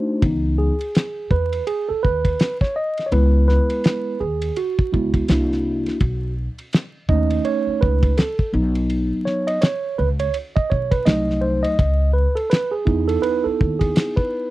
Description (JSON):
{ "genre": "hip hop, jazz-hop", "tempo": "83 BPM", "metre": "4/4", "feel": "swing 61% on 16ths", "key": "C# minor", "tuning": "A4 = 440 Hz", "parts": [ { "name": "mellow tine electric piano", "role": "accompaniment", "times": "0.0-14.5 s", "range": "E3 to D#5", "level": "-21 LUFS", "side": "moving between left 2 dB and right 6 dB", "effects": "auto-pan" }, { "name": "upright bass", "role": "bass", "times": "0.2-13.9 s", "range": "B1 to E2", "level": "-21 LUFS", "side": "equal", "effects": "none" }, { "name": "cloth-damped thuddy drum kit", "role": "drums", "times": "0.2-14.3 s", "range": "hi-hat, kick drum, ride cymbal, snare drum", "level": "-19 LUFS", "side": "equal", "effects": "none" } ], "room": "little or no reverb", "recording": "dry, close 1970s-style studio recording, vinyl crackle", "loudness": "-18 LUFS", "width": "side -17 dB against mid", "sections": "0.2-14.5 A section", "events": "break 0.0; tine electric piano solo 0.2-14.5", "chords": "0.2 C#m9; 3.1 F#9sus4/C#; 5.3 C9; 6.0 B9; 8.5 Badd9; 11.1 Cdim7; 11.8 C#m9", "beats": "| 0.22 0.94 1.67 2.39 | 3.11 3.84 4.56 5.28 | 6.01 6.73 7.45 8.17 | 8.90 9.62 10.34 11.07 | 11.79 12.51 13.23 13.96" }